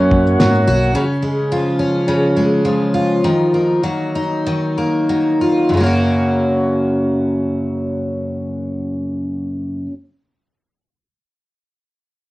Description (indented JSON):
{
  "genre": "acoustic pop",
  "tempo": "91-107 BPM",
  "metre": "4/4",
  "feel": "swing 55% on 16ths",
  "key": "F# major",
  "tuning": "A4 = 442 Hz",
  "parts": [
    { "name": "picked twelve-string acoustic guitar", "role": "accompaniment", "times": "0.0-9.9 s", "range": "F#2 to F#4", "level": "-15 LUFS", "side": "equal", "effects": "cassette tape" },
    { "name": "mellow tonewheel organ", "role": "sustained chords", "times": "0.0-0.9 s", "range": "A#3 to F#5", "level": "-18 LUFS", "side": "right 1 dB", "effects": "slow rotary speaker, cassette tape" },
    { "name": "vintage muted fingered electric bass", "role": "bass", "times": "0.0-0.9 s", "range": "B1 to G#2", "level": "-16 LUFS", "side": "equal", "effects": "none" },
    { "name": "cloth-damped thuddy drum kit", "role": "drums", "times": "0.1-0.9 s", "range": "kick drum, shaker, snare drum", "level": "-18 LUFS", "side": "equal", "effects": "cassette tape" }
  ],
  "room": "moderate studio reverb, RT60 0.6 s",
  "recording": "home recording on cassette",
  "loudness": "-15 LUFS",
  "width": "side -18 dB against mid",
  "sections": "1.0-5.7 A section; 5.7-8.4 B section",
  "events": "slowing down 1.0-5.7",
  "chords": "0.0 F#; 1.0 C#; 3.2 D#madd9; 5.7 F#"
}